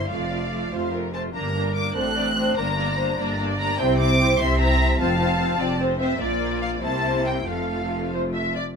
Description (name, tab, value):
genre	quick classical-period movement for string orchestra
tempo	98 BPM (dotted quarters)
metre	6/8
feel	uneven beats, rubato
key	F major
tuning	A4 = 439 Hz
part	rich symphonic violin section	melody	0.0-8.1 s	C5 to F#6	-27 LUFS	left 1 dB	none
part	rich symphonic violin section	second line	0.0-8.6 s	A4 to F5	-27 LUFS	equal	none
part	rich symphonic viola section	accompaniment	0.0-8.5 s	A3 to F4	-26 LUFS	equal	none
part	clear symphonic cello section	bass	0.0-8.6 s	F2 to C3	-28 LUFS	right 1 dB	none
part	clear symphonic double bass section	bass	0.0-8.5 s	F1 to C2	-28 LUFS	equal	none
room	light reverb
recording	minimal, uncompressed stereo recording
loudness	-20 LUFS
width	side -6 dB against mid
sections	0.0-8.8 A section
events	none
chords	0.1 F; 1.3 Gm; 2.0 D7/A; 2.6 Gm; 3.8 C7; 5.0 F; 6.2 Bb; 6.8 C7; 7.5 F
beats	| 0.11 0.72 | 1.34 1.96 | 2.57 3.19 | 3.79 4.40 | 5.00 5.60 | 6.20 6.83 | 7.47 8.13